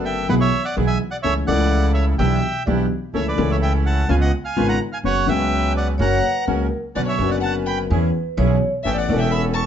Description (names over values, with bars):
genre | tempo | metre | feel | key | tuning
tango | 126 BPM | 4/4 | rubato | unclear | A4 = 443 Hz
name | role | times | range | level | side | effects
dark concert grand piano | accompaniment | 0.0-9.7 s | E1 to A4 | -22 LUFS | left 2 dB | none
bandoneon | stabs | 0.0-9.7 s | C#3 to B4 | -30 LUFS | right 5 dB | none
upright bass | bass | 0.0-9.7 s | E1 to E2 | -22 LUFS | right 1 dB | none
bandoneon | melody | 0.1-9.7 s | B4 to C#6 | -24 LUFS | right 2 dB | none
vibraphone with medium hard mallets | second line | 6.0-8.7 s | A#4 to C#5 | -26 LUFS | right 2 dB | none
warm violin | second line | 6.0-9.6 s | C#5 to A5 | -27 LUFS | left 6 dB | none
room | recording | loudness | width
light reverb | nothing above 7.8 kHz | -17 LUFS | side -9 dB against mid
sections
0.0-9.7 A section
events
none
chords
0.3 E/B; 1.2 A/C#; 2.2 Em7/B; 3.1 A/C#; 4.1 C#7; 5.0 F#sus4; 6.0 F#; 6.9 Bmadd9; 7.9 E6; 8.8 Aadd9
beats
0.29 0.76 | 1.24 1.72 2.19 2.67 | 3.14 3.62 4.09 4.57 | 5.04 5.51 5.99 6.47 | 6.95 7.42 7.90 8.37 | 8.85 9.32